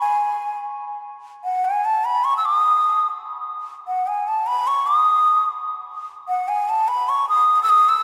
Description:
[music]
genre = indian classical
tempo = 149 BPM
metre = 3/4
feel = straight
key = unclear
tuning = A4 = 437 Hz
[part]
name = breathy bansuri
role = solo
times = 0.0-8.0 s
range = F#5 to E6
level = -20 LUFS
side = equal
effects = none
[sound]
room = wet cathedral reverb, RT60 4.5 s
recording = recorded in a church or concert hall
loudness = -20 LUFS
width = mono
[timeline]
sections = 0.0-8.0 A section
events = none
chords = none

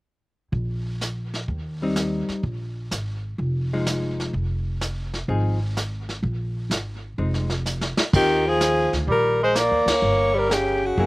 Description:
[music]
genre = jazz, small-group swing and bop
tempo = 126 BPM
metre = 4/4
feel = swing 69% on 8ths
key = Eb major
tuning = A4 = 440 Hz
[part]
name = upright bass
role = bass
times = 0.5-11.1 s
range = F1 to Eb2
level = -27 LUFS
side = equal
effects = none
[part]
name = vintage brush drum kit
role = drums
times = 0.5-11.1 s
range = brushed snare drum, crash cymbal, hi-hat, kick drum, ride cymbal, snare drum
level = -26 LUFS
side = equal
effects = none
[part]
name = hollow-body jazz guitar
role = accompaniment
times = 1.8-11.1 s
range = Eb3 to Ab4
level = -27 LUFS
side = left 2 dB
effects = none
[part]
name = mellow tenor saxophone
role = second line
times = 8.1-11.1 s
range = Db3 to Bb3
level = -23 LUFS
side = right 2 dB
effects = slapback echo
[part]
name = breathy alto saxophone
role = melody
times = 8.2-11.1 s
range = Gb4 to D5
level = -21 LUFS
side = left 1 dB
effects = slapback echo
[sound]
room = little or no reverb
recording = recorded outdoors, with no room sound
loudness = -21 LUFS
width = side -21 dB against mid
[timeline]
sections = 0.5-8.1 A section; 8.1-11.1 B section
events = drum fill 7.7-8.1; band accent 9.8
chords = 0.5 Eb6/Bb; 2.4 Bb7sus4; 4.3 Fm7; 6.2 Bb9sus4; 8.1 Ebsus2; 10.0 Gdim

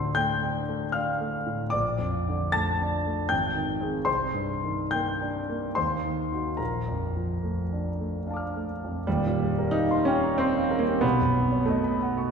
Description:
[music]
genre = classical, impressionist solo piano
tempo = 66-93 BPM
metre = 3/4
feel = rubato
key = Bb major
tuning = A4 = 441 Hz
[part]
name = warm concert grand piano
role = solo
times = 0.0-12.3 s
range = Eb1 to A6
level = -24 LUFS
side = equal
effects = none
[sound]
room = wet scoring stage reverb, RT60 2.1 s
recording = minimal, uncompressed stereo recording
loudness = -24 LUFS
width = side -6 dB against mid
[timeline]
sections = 0.0-9.1 A section; 9.1-12.3 B section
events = none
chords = 0.0 Dm7; 1.7 Bbmaj7; 3.3 Abmaj7; 4.1 Cm9; 5.8 Ebm6; 6.6 Bbmaj7; 9.1 Eb69; 11.0 B9

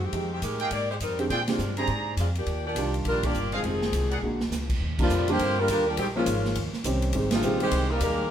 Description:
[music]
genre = jazz, big band swing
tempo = 205 BPM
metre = 4/4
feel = swing 62% on 8ths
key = Eb major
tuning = A4 = 440 Hz
[part]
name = warm saxophone section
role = melody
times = 0.0-8.3 s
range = Eb3 to D5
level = -28 LUFS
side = left 1 dB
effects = none
[part]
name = upright bass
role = bass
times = 0.0-8.3 s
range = F1 to Bb2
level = -30 LUFS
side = equal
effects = none
[part]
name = warm concert grand piano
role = accompaniment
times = 0.1-7.6 s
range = D3 to Ab4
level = -30 LUFS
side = right 1 dB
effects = none
[part]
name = swinging big-band drum kit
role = drums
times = 0.1-8.1 s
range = crash cymbal, hi-hat, kick drum, ride cymbal, snare drum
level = -32 LUFS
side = right 1 dB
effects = none
[part]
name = bright trumpet section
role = stabs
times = 0.6-4.2 s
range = Ab4 to Bb5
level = -31 LUFS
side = right 3 dB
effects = none
[part]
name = mellow trombone section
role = second line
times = 3.5-8.3 s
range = G2 to C4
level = -31 LUFS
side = right 1 dB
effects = none
[sound]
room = wet stone room reverb, RT60 0.9 s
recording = band playing live in one room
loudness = -24 LUFS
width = side -9 dB against mid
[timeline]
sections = 0.0-4.8 A section; 4.8-8.3 B section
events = band accent 1.4, 3.2, 5.0, 7.3; drum fill 4.2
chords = 0.1 Fm9; 1.3 Bb13; 2.5 Ebmaj9; 3.6 Fm7; 4.2 Bb7alt; 4.8 Ebmaj9; 6.0 Bbm7; 6.6 Eb13; 7.1 Abmaj7

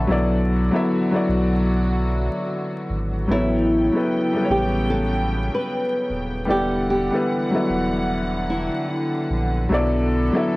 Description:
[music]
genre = lo-fi hip hop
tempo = 75 BPM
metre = 4/4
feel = swing 61% on 16ths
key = E dorian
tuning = A4 = 440 Hz
[part]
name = felt-muted upright piano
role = accompaniment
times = 0.0-10.6 s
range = F#3 to C#6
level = -22 LUFS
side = left 1 dB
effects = cassette tape, low-pass filter
[part]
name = warm studio string section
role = sustained chords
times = 0.0-10.6 s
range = C#3 to G5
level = -28 LUFS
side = equal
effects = low-pass filter
[part]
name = warm sub bass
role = bass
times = 0.0-10.3 s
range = D#1 to B1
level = -24 LUFS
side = equal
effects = tube saturation
[part]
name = flamenco guitar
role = melody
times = 3.3-8.9 s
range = E4 to B4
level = -24 LUFS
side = equal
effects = low-pass filter
[sound]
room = moderate spring reverb, RT60 1.3 s, small room ambience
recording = worn, warbling old tape, cassette tape, vinyl crackle, warbly pitch drift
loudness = -19 LUFS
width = side -21 dB against mid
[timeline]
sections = 0.0-10.6 A section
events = none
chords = 0.1 Esus2/B; 3.3 A9; 6.5 Em9; 9.7 Bm7

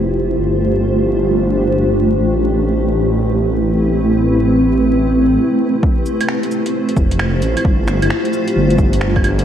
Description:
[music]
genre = future garage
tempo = 132 BPM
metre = 4/4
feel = swing 65% on 16ths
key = A minor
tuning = A4 = 440 Hz
[part]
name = granular cloud pad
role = sustained chords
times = 0.0-9.4 s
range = A3 to C5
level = -15 LUFS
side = equal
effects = built-in reverb, sidechain pumping
[part]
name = swelling detuned saw bass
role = bass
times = 0.0-9.4 s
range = F1 to A1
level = -17 LUFS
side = equal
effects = tube saturation, sidechain pumping
[part]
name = electronic kick drum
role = drums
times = 5.8-9.2 s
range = none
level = -15 LUFS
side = equal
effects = overdrive
[part]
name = deep house drum kit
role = drums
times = 6.1-9.4 s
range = cabasa, claves, finger snaps, hi-hat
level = -24 LUFS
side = right 3 dB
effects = overdrive
[sound]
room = wet lush hall reverb, RT60 1.8 s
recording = dreamy mix soaked in reverb, vinyl crackle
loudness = -13 LUFS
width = side -9 dB against mid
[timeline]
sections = 0.0-5.8 A section; 5.8-9.4 B section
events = filter sweep on ambient pad 0.0-5.8; break 5.4-5.8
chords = 0.4 G9sus4; 2.2 Am9; 5.8 Fmaj9; 7.7 G9sus4

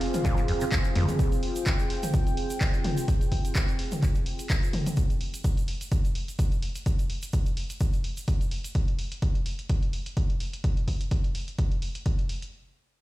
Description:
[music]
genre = acid house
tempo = 127 BPM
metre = 4/4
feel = swing 55% on 16ths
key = F minor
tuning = A4 = 440 Hz
[part]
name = warm analog pad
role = sustained chords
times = 0.0-4.9 s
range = C4 to G5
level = -32 LUFS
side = right 1 dB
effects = chorus, sidechain pumping
[part]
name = punchy analog drum machine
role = drums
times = 0.0-12.5 s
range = handclaps, hi-hat, toms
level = -34 LUFS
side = equal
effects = none
[part]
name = egg shaker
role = percussion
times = 0.1-8.7 s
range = none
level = -44 LUFS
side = right 3 dB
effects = none
[part]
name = acid bass, saw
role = riff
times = 0.2-1.1 s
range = F2 to C3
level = -30 LUFS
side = equal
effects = overdrive, wide subtle chorus, cassette tape, sidechain pumping, dub echo
[part]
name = electronic kick drum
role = drums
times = 0.2-12.2 s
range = none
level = -26 LUFS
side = equal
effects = none
[sound]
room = digital ambience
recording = played on a big sound system in a bare room, stone room reverb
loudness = -25 LUFS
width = side -17 dB against mid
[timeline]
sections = 0.0-12.5 A section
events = none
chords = 0.0 Fm

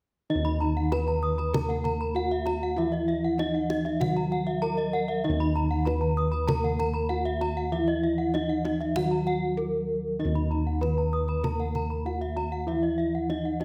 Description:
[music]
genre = Balinese gamelan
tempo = 97 BPM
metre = 4/4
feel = straight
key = Eb pelog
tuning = A4 = 438 Hz
[part]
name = gamelan-type bronze metallophone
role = melody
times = 0.3-13.6 s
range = Eb4 to Cb5-20c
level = -32 LUFS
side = equal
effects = none
[part]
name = gamelan-type bronze metallophone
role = accompaniment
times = 0.3-13.6 s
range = Eb3 to Bb3-30c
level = -37 LUFS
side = equal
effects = none
[part]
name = gamelan-type bronze metallophone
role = arpeggios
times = 0.3-13.6 s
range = Eb5 to Cb6-20c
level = -37 LUFS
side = equal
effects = none
[part]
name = gamelan-type bossed gongs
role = bass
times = 0.3-13.6 s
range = Eb2 to Fb4+20c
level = -32 LUFS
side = equal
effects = none
[part]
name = gamelan-type bronze metallophone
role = arpeggios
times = 0.4-13.6 s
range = Eb5 to Eb6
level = -38 LUFS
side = equal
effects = none
[part]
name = kendang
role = percussion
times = 0.5-13.6 s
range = none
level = -37 LUFS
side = equal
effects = none
[sound]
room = moderate recital hall reverb, RT60 1.3 s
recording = none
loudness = -27 LUFS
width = mono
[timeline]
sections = 0.3-13.6 A section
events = none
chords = none

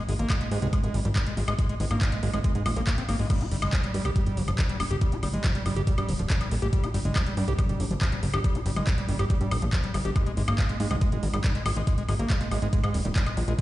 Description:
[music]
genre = psychedelic trance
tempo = 140 BPM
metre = 4/4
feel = straight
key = G phrygian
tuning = A4 = 437 Hz
[part]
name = overdriven acid bass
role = riff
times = 0.0-13.6 s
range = F3 to G4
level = -32 LUFS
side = moving between left 4 dB and right 5 dB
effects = distortion, auto-pan, vintage 12-bit sampler grit, sidechain pumping, digital delay
[part]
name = plucky analog bass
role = bass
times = 0.1-13.5 s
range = D1 to Ab2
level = -26 LUFS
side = equal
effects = none
[part]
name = garage drum kit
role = drums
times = 0.1-13.6 s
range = crash cymbal, handclaps, hi-hat, woodblock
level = -33 LUFS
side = left 1 dB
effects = overdrive
[part]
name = electronic kick drum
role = drums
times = 0.3-13.6 s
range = none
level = -25 LUFS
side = equal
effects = overdrive
[sound]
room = little or no reverb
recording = played on a big sound system in a bare room, large studio reverb, nothing above 10.9 kHz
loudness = -24 LUFS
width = side -16 dB against mid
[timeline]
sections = 0.0-13.6 A section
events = none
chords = 0.0 Ab5; 3.3 G5; 10.2 Ab5

